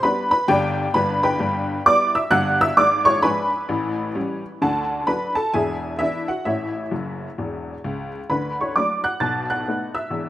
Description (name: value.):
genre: jazz, stride piano.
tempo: 131 BPM.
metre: 4/4.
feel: swing 63% on 8ths.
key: D major.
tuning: A4 = 440 Hz.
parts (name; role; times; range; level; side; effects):
honky-tonk upright piano; solo; 0.0-10.3 s; E1 to A6; -19 LUFS; equal; none.
room: light reverb, small room ambience.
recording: rough home demo mix.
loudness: -19 LUFS.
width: side -13 dB against mid.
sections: 0.0-8.3 A section; 8.3-10.3 B section.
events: honky-tonk piano fill 6.9-8.3.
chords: 0.0 G; 0.9 Em/G; 2.8 G#dim7; 3.7 A7; 4.6 D; 5.5 E7; 6.5 A; 8.3 D; 9.2 B7.